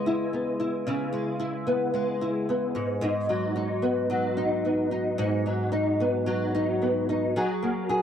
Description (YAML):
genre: indie pop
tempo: 111 BPM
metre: 4/4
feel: straight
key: unclear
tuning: A4 = 441 Hz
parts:
  - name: nylon-string guitar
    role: solo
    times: 0.0-8.0 s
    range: G#2 to G#4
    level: -24 LUFS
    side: equal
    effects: ensemble chorus, warbly pitch drift
room: light reverb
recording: dry, close 1970s-style studio recording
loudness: -24 LUFS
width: side -8 dB against mid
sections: 0.0-8.0 A section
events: none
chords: 0.0 C#m7; 2.7 G#m7; 7.3 F#add9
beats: 0.32 | 0.85 1.40 1.94 2.47 | 3.02 3.56 4.09 4.63 | 5.18 5.72 6.26 6.80 | 7.34 7.88